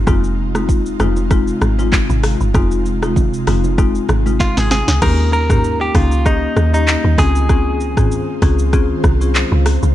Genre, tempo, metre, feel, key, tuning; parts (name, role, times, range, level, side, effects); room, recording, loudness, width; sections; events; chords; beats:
afrobeats; 97 BPM; 4/4; swing 55% on 16ths; A4 = 441 Hz
ethereal airy pad; sustained chords; 0.0-9.9 s; C3 to C5; -25 LUFS; right 1 dB; ensemble chorus, built-in reverb, tremolo
deep log drum bass; bass; 0.0-9.9 s; F1 to Eb2; -16 LUFS; equal
marimba with medium mallets; accompaniment; 0.1-9.4 s; Ab3 to Ab4; -21 LUFS; left 6 dB
afro-pop drum kit; drums; 0.1-9.9 s; crash cymbal, handclaps, hi-hat, kick drum, rim click, shaker, snare drum, toms; -17 LUFS; equal; vintage 12-bit sampler grit
congas; percussion; 0.1-4.9 s; -27 LUFS; right 4 dB
direct-recorded clean electric guitar; melody; 4.4-9.0 s; Eb4 to Bb4; -20 LUFS; right 1 dB; spring reverb, digital delay
digital ambience; dark, warm production; -13 LUFS; side -13 dB against mid
0.0-5.0 A section; 5.0-9.9 B section
drum fill 4.4-5.0
0.1 Fm7; 5.0 Eb7; 7.2 Dbmaj7
| 0.07 0.69 1.31 1.93 | 2.54 3.16 3.78 4.40 | 5.02 5.64 6.26 6.88 | 7.49 8.11 8.73 9.35